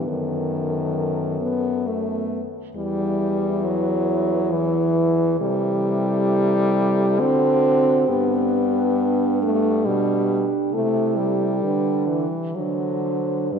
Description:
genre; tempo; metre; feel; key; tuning
classical, lyrical piece for horn quartet; 68 BPM; 3/4; rubato; E minor, G major from 5.4 s; A4 = 442 Hz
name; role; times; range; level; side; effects
mellow French horn; melody; 0.0-13.6 s; G4 to C5; -29 LUFS; left 7 dB; none
mellow French horn; second line; 0.0-13.6 s; B3 to F#4; -26 LUFS; right 9 dB; none
mellow French horn; accompaniment; 0.0-13.6 s; D#3 to C4; -22 LUFS; left 2 dB; none
warm French horn; bass; 0.0-13.6 s; E2 to D3; -27 LUFS; right 2 dB; none
room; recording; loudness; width
wet church reverb, RT60 3.9 s; dark, warm production; -19 LUFS; side -6 dB against mid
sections
0.0-13.6 A section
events
none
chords
0.1 B7/F#; 2.8 Em; 5.4 Am7/C; 7.2 D; 8.1 G; 10.7 Am/C; 11.6 G/D; 12.6 D7

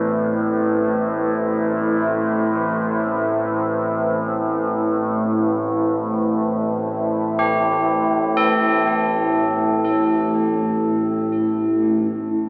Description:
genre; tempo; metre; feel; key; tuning
dark ambient drone; free time; none; none; A minor; A4 = 440 Hz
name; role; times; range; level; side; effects
deep dark ambient pad; sustained chords; 0.0-12.5 s; A3 to C5; -23 LUFS; equal; chorus, built-in reverb
tubular bells; arpeggios; 0.0-12.1 s; D4 to A4; -26 LUFS; equal; tape echo
overtone-sweeping drone; drone; 0.0-12.5 s; A1 to A2; -25 LUFS; equal; chorus, built-in reverb
room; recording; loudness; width
wet cathedral reverb, RT60 4.9 s; small speaker sound; -20 LUFS; mono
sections
0.0-11.9 A section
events
none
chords
0.0 Amadd9; 11.9 A5

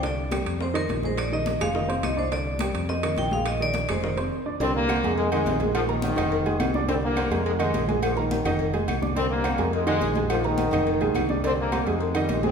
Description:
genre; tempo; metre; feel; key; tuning
latin, salsa; 210 BPM; 4/4; straight; unclear; A4 = 440 Hz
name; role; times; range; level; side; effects
vibraphone with hard mallets; melody; 0.0-4.2 s; Bb4 to G5; -30 LUFS; left 2 dB; none
warm upright piano; accompaniment; 0.0-12.5 s; D3 to D6; -27 LUFS; right 2 dB; none
modern bright fingered electric bass; bass; 0.0-12.5 s; F1 to F2; -29 LUFS; equal; none
bongos and cowbell; percussion; 0.0-12.5 s; none; -35 LUFS; left 6 dB; none
congas; percussion; 0.0-12.5 s; none; -34 LUFS; left 2 dB; none
timbales and agogo bells; percussion; 0.0-12.4 s; none; -33 LUFS; right 3 dB; none
claves; percussion; 0.3-12.3 s; none; -41 LUFS; left 2 dB; none
bright trombone section; melody; 4.6-12.5 s; Ab2 to C4; -26 LUFS; left 1 dB; none
room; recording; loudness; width
wet recital hall reverb, RT60 1.7 s; recorded in a church or concert hall; -22 LUFS; side -6 dB against mid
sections
0.0-4.6 A section; 4.6-12.5 B section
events
break 4.3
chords
0.0 Csus2; 0.6 Fm7; 1.2 Bb7sus4; 1.7 F5; 2.3 Csus2; 2.9 Fm7; 3.5 Bb7sus4; 4.0 F5; 4.6 Csus2; 5.2 Fm7; 5.7 Bb7sus4; 6.3 Fm7; 6.9 Csus2; 7.5 Fm7; 8.0 Bb7sus4; 8.6 Fm7; 9.2 Csus2; 9.7 Fm7; 10.3 Bb7sus4; 10.9 Fm7; 11.4 Csus2; 12.0 Fm7

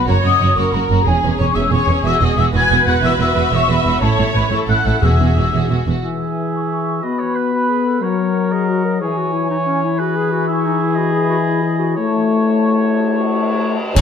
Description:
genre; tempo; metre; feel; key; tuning
cinematic, heroic adventure film score; 121 BPM (dotted quarters); 12/8; straight; E major; A4 = 440 Hz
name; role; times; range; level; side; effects
warm symphonic violin section; melody; 0.0-6.0, 14.0 s; C#4 to G#5; -26 LUFS; left 2 dB; none
mellow flute section; second line; 0.0-14.0 s; F#5 to G#6; -21 LUFS; left 4 dB; none
rich symphonic violin section; second line; 0.0-5.9, 14.0 s; G#4 to G#5; -25 LUFS; left 2 dB; none
rich symphonic viola section; accompaniment; 0.0-5.8, 14.0 s; D#4 to E5; -22 LUFS; right 1 dB; none
rich symphonic cello section; bass; 0.1-5.9, 14.0 s; C#2 to A2; -19 LUFS; right 3 dB; none
rich symphonic double bass section; bass; 0.1-5.9, 14.0 s; E1 to C#2; -19 LUFS; right 4 dB; none
timpani; percussion; 5.0-5.5, 14.0 s; E2 to C#3; -18 LUFS; left 1 dB; none
clear clarinet; second line; 6.0-13.8 s; C#4 to A#4; -25 LUFS; left 2 dB; none
clear oboe; second line; 6.0-14.0 s; B4 to E5; -26 LUFS; right 1 dB; none
mellow French horn section; sustained chords; 6.0-14.0 s; E3 to C#5; -18 LUFS; left 5 dB; none
warm trumpet; stabs; 6.0-14.0 s; G#4 to G#5; -23 LUFS; right 3 dB; none
cymbal swell, clash cymbals and concert bass drum; percussion; 10.0-14.0 s; none; -21 LUFS; right 1 dB; none
bright trombone section; sustained chords; 14.0 s; C#3 to D#4; -28 LUFS; right 7 dB; none
room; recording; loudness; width
moderate scoring stage reverb, RT60 1.6 s; none; -14 LUFS; side -7 dB against mid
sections
0.0-6.0 A section; 6.0-14.0 B section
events
none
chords
0.1 F#; 1.1 C#m/E; 2.0 Eadd9; 4.0 A; 5.0 Eadd9; 7.0 B5; 8.0 F#; 9.0 C#m/E; 10.0 Eadd9; 12.0 A

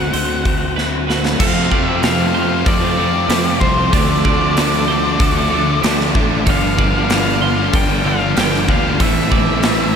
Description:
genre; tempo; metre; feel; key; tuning
rock, shoegaze and dream pop; 95 BPM; 4/4; straight; unclear; A4 = 441 Hz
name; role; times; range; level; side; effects
octave-fuzz lead guitar; melody; 0.0-10.0 s; C5 to G5; -21 LUFS; left 1 dB; distortion, tape echo
clean electric guitar; arpeggios; 0.0-9.9 s; G4 to C6; -25 LUFS; right 7 dB; lush chorus, tape echo
crunchy overdriven guitar; riff; 0.0-10.0 s; F2 to F#4; -21 LUFS; left 7 dB; lush chorus
overdriven electric guitar; riff; 0.0-10.0 s; F2 to F#4; -22 LUFS; right 6 dB; reverse reverb
fuzz fingered electric bass; bass; 0.0-10.0 s; G1 to F2; -21 LUFS; equal; overdrive
big rock drum kit; drums; 0.1-9.8 s; crash cymbal, hi-hat, kick drum, snare drum; -19 LUFS; equal; none
sludgy distorted guitar; riff; 1.4-10.0 s; F2 to D4; -23 LUFS; equal; overdrive
room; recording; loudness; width
wet huge ambient reverb, RT60 8.2 s; dreamy mix soaked in reverb; -13 LUFS; side -7 dB against mid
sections
0.0-1.4 A section; 1.4-10.0 B section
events
drum fill 0.8-1.4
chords
0.0 D7; 1.4 F; 3.9 Dm7; 6.5 G9sus4; 9.0 Am

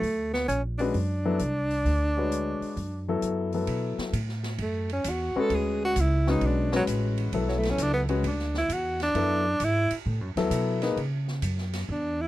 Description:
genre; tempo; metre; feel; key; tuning
modal jazz; 132 BPM; 4/4; swing 67% on 8ths; B dorian from 3.7 s; A4 = 440 Hz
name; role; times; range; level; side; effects
breathy tenor saxophone; melody; 0.0-12.3 s; F#3 to A4; -27 LUFS; right 1 dB; none
upright bass; bass; 0.0-12.3 s; A1 to C#3; -29 LUFS; right 1 dB; none
open jazz drum kit; drums; 0.0-11.9 s; hi-hat, ride cymbal, snare drum; -39 LUFS; right 1 dB; none
warm grand piano; accompaniment; 0.8-11.0 s; F#3 to C#5; -28 LUFS; left 4 dB; none
room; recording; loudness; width
little or no reverb; dry, close 1970s-style studio recording; -24 LUFS; side -15 dB against mid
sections
0.0-3.7 A section; 3.7-12.3 B section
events
tenor saxophone solo 3.7-12.3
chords
0.0 Bm11; 11.0 C#madd11

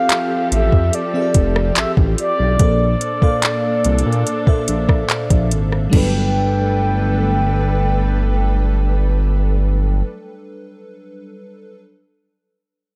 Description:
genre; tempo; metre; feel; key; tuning
contemporary R&B; 72 BPM; 4/4; straight; unclear; A4 = 440 Hz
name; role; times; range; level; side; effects
mellow horn-like synth lead; melody; 0.0-10.0 s; D5 to G5; -24 LUFS; equal; chorus, delay
FM electric piano with soft pad layer; accompaniment; 0.0-11.8 s; Bb2 to G5; -27 LUFS; equal; chorus
muted studio string section; sustained chords; 0.0-10.0 s; F3 to B4; -28 LUFS; equal; none
smooth R&B drum kit; drums; 0.1-6.1 s; crash cymbal, handclaps, hi-hat, kick drum, rim click; -19 LUFS; equal; none
smooth synth bass; bass; 0.5-10.0 s; F1 to Bb2; -19 LUFS; equal; none
room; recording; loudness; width
little or no reverb; none; -17 LUFS; mono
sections
0.0-5.9 A section; 5.9-9.3 B section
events
none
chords
0.0 Fmaj9; 2.6 Bbmaj9; 5.9 Gmaj9

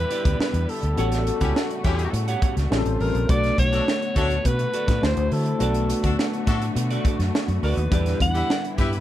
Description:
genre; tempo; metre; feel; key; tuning
polished 1980s jazz-funk pop; 104 BPM; 4/4; straight; B minor; A4 = 441 Hz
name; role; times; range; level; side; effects
breathy alto saxophone; melody; 0.0-8.8 s; A4 to F#5; -27 LUFS; equal; none
tine electric piano; accompaniment; 0.0-9.0 s; G3 to C5; -28 LUFS; left 3 dB; medium stereo tremolo, lush chorus
muted studio string section; sustained chords; 0.0-9.0 s; C#3 to B#4; -34 LUFS; equal; none
vintage muted fingered electric bass; bass; 0.0-9.0 s; A1 to D3; -24 LUFS; equal; none
clean electric guitar; riff; 0.1-9.0 s; E4 to G5; -33 LUFS; right 6 dB; lush chorus
crisp fusion drum kit; drums; 0.1-9.0 s; hi-hat, kick drum, snare drum; -25 LUFS; right 1 dB; none
warm horn section; second line; 1.4-9.0 s; C#4 to B4; -30 LUFS; left 5 dB; none
room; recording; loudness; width
small room reverb; none; -20 LUFS; side -13 dB against mid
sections
0.0-9.0 A section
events
none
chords
0.0 Em7; 1.0 A13; 2.7 A7alt; 3.3 Bm7; 5.0 D9; 5.6 Bm7; 7.9 Em7

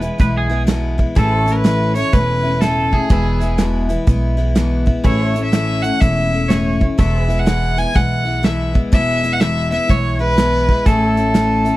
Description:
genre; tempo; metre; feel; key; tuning
honky-tonk and classic country; 124 BPM; 4/4; swing 64% on 8ths; A major; A4 = 439 Hz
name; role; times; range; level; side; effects
twangy electric guitar; second line; 0.0-0.6 s; G#4 to B4; -24 LUFS; right 2 dB; wide subtle chorus, tape echo
picked steel-string acoustic guitar; accompaniment; 0.0-11.8 s; E2 to E4; -20 LUFS; left 2 dB; none
pedal steel guitar; sustained chords; 0.0-11.8 s; G#4 to E5; -30 LUFS; right 1 dB; wide subtle chorus
upright bass; bass; 0.0-11.7 s; E1 to B1; -19 LUFS; right 1 dB; none
natural country drum kit; drums; 0.0-11.7 s; hi-hat, kick drum, snare drum; -15 LUFS; right 1 dB; none
rich fiddle; melody; 1.2-11.8 s; G#4 to G#5; -19 LUFS; equal; none
room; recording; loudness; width
little or no reverb; dry, close 1970s-style studio recording; -14 LUFS; side -17 dB against mid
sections
0.0-11.8 A section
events
none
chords
0.0 E; 1.2 A; 3.1 E; 5.0 A; 7.0 E; 10.9 A

